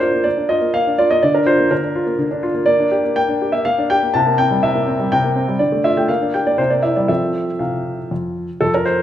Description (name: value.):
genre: classical-period piano sonatina.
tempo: 123 BPM.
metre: 3/4.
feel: straight.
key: F major.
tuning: A4 = 440 Hz.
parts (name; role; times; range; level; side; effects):
warm grand piano; solo; 0.0-9.0 s; F2 to A5; -15 LUFS; equal; none.
room: wet recital hall reverb, RT60 1.6 s.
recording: none.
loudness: -15 LUFS.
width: side -11 dB against mid.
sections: 0.0-8.6 A section.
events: none.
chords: 0.0 Bb; 1.2 Bb/D; 2.7 Gm/Bb; 4.1 C7; 5.6 Dm; 6.1 Gm7/Bb; 6.6 C7; 7.1 F.